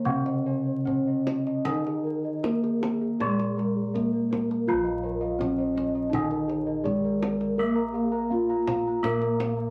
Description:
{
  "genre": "Javanese gamelan",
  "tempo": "73-83 BPM",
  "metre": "4/4",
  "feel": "straight",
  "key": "Bb slendro",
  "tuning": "A4 = 439 Hz",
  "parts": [
    { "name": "gamelan-type bronze metallophone", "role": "melody", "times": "0.0-9.7 s", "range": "Ab3-25c to Bb4", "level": "-29 LUFS", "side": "equal", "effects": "none" },
    { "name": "gamelan-type bronze metallophone", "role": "accompaniment", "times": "0.0-9.7 s", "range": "Db3-45c to Bb3", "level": "-35 LUFS", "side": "equal", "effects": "none" },
    { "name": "gamelan-type bossed gongs", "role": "arpeggios", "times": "0.0-9.7 s", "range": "Ab4-25c to Bb5", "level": "-39 LUFS", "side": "equal", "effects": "none" },
    { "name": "gamelan-type bronze metallophone", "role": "arpeggios", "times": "0.0-9.7 s", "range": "Ab4-25c to Bb5", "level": "-39 LUFS", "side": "equal", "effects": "none" },
    { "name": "gamelan-type bossed gongs", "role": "bass", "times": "0.0-9.7 s", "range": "Bb1 to Bb4", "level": "-37 LUFS", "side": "equal", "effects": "none" },
    { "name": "kendang", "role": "percussion", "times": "0.1-9.6 s", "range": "none", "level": "-38 LUFS", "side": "equal", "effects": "none" }
  ],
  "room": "moderate small room reverb, RT60 0.6 s",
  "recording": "vinyl crackle",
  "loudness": "-27 LUFS",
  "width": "mono",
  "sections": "0.0-4.7 A section; 4.7-9.7 B section",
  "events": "none",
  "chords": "none",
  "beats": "0.05 0.86 | 1.65 2.43 3.19 3.94 | 4.68 5.40 6.13 6.86 | 7.58 8.31 9.04"
}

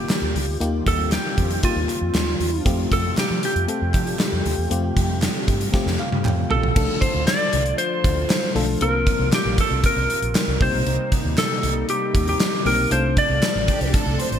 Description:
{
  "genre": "1980s-style pop",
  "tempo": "117 BPM",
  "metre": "4/4",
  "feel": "straight",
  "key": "unclear",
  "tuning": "A4 = 440 Hz",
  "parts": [
    { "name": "lightly driven lead guitar", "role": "melody", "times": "0.0-13.9 s", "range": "F4 to D5", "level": "-24 LUFS", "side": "equal", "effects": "wide subtle chorus, ping-pong delay" },
    { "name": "mellow FM electric piano", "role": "accompaniment", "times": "0.0-14.4 s", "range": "F3 to A5", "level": "-28 LUFS", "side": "left 4 dB", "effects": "chorus" },
    { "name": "warm analog pad", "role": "sustained chords", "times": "0.0-14.4 s", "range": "C3 to F4", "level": "-31 LUFS", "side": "equal", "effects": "chorus" },
    { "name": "vintage muted fingered electric bass", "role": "bass", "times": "0.0-14.4 s", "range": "A1 to F3", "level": "-24 LUFS", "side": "right 1 dB", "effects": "none" },
    { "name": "gated 80s drum kit", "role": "drums", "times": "0.1-14.4 s", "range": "crash cymbal, hi-hat, kick drum, snare drum, tambourine, toms", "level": "-22 LUFS", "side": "equal", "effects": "gated reverb" },
    { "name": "group handclap", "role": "percussion", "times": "0.1-13.5 s", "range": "none", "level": "-40 LUFS", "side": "right 5 dB", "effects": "none" },
    { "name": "rich studio violin section", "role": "second line", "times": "13.7-14.4 s", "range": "G4 to C5", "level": "-28 LUFS", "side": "right 3 dB", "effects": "ping-pong delay" }
  ],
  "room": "moderate lush hall reverb, RT60 2.7 s",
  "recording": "bright 1980s-style digital production",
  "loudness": "-18 LUFS",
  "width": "side -9 dB against mid",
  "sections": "0.0-6.8 A section; 6.8-14.4 B section",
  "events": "drum fill 5.7-6.8; FM electric piano fill 5.7-6.8",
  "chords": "0.0 Ebadd9; 2.7 Fadd9; 6.8 Dm/C; 8.8 Bbsus2; 10.6 Cm7; 12.9 F6",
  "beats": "0.09 | 0.61 1.12 1.63 2.15 | 2.66 3.17 3.68 4.20 | 4.71 5.22 5.74 6.25 | 6.76 7.27 7.79 8.30 | 8.81 9.32 9.84 10.35 | 10.86 11.38 11.89 12.40 | 12.91 13.43 13.94"
}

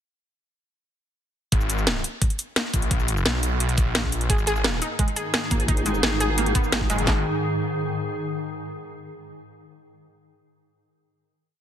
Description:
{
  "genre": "dark technical drum and bass",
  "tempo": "173 BPM",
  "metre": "4/4",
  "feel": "straight",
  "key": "G# minor",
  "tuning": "A4 = 440 Hz",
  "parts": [
    { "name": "wide detuned saw bass", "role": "bass", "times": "1.5-4.8, 6.9-7.2 s", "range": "F#1 to B1", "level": "-24 LUFS", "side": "equal", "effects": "chorus, overdrive, sidechain pumping" },
    { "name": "drum and bass drum kit", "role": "drums", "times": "1.5-7.2 s", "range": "handclaps, kick drum, snare drum", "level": "-22 LUFS", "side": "equal", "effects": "none" },
    { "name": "drum and bass drum kit", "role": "drums", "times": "1.5-7.1 s", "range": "hi-hat, shaker, snare drum", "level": "-25 LUFS", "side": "equal", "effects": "none" },
    { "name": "swarming drone", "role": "sustained chords", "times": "4.9-7.2 s", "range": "G#2 to G#4", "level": "-28 LUFS", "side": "equal", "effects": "built-in reverb, sidechain pumping" },
    { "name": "analog pluck", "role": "arpeggios", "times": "4.3-7.2 s", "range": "G#3 to G#4", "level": "-28 LUFS", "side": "right 1 dB", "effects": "chorus, sidechain pumping, dub echo" },
    { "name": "vowel-sweep wobble bass", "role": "bass", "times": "5.5-6.9 s", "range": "G#1 to A#1", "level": "-26 LUFS", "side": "equal", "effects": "chorus" }
  ],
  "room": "light reverb, digital ambience",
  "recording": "dense, heavily limited modern master",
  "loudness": "-21 LUFS",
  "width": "side -10 dB against mid",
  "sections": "1.5-7.1 drop; 7.1-8.5 final chord",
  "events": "drop 1.5-7.1",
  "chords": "1.5 G#5",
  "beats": "| 1.52 1.87 2.22 2.56 | 2.91 3.26 3.60 3.95 | 4.30 4.64 4.99 5.34 | 5.68 6.03 6.38 6.72 | 7.07"
}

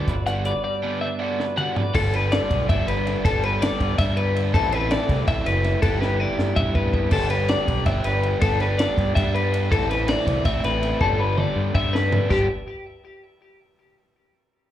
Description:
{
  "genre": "math rock and midwest emo",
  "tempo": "324 BPM (eighths)",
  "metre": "7/8",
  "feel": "straight",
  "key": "G major",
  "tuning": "A4 = 437 Hz",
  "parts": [
    { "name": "twelve-string electric guitar", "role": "accompaniment", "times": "0.0-3.2 s", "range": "G2 to B4", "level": "-31 LUFS", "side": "right 6 dB", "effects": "none" },
    { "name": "twelve-string electric guitar", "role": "arpeggios", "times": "0.0-12.5 s", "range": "G4 to F#5", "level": "-24 LUFS", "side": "left 4 dB", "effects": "digital delay, slapback echo" },
    { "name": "overdriven electric guitar", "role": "riff", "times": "0.0-12.5 s", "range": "G2 to G4", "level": "-27 LUFS", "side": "right 3 dB", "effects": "slapback echo" },
    { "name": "growling fingered electric bass", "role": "bass", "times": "0.0-12.5 s", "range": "F#1 to G2", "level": "-24 LUFS", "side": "equal", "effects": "overdrive" },
    { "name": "compact cocktail drum kit", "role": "drums", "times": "0.1-12.4 s", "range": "china cymbal, crash cymbal, hi-hat, kick drum, ride cymbal, snare drum, toms", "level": "-25 LUFS", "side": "equal", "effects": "none" }
  ],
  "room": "little or no reverb",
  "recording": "live gig heard through the venue's PA, club reverb",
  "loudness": "-19 LUFS",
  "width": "side -12 dB against mid",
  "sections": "0.0-1.9 A section; 1.9-12.3 B section; 12.3-13.6 C section",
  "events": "drum fill 1.4-1.9, 6.0-7.1, 11.0-12.3",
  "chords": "0.0 Gmaj7; 1.9 G6; 4.5 Am; 5.8 Em7/G; 9.7 Am; 11.0 Gadd9; 12.3 G5",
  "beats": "0.08 0.27 0.45 | 0.64 0.83 1.01 1.20 1.39 1.57 1.76 | 1.94 2.13 2.31 2.50 2.69 2.87 3.06 | 3.24 3.43 3.61 3.80 3.98 4.17 4.35 | 4.54 4.72 4.91 5.09 5.28 5.46 5.65 | 5.83 6.01 6.20 6.38 6.57 6.75 6.94 | 7.12 7.31 7.49 7.68 7.86 8.05 8.23 | 8.42 8.60 8.79 8.97 9.16 9.34 9.53 | 9.71 9.90 10.08 10.27 10.45 10.64 10.82 | 11.01 11.20 11.38 11.57 11.75 11.94 12.12 | 12.31"
}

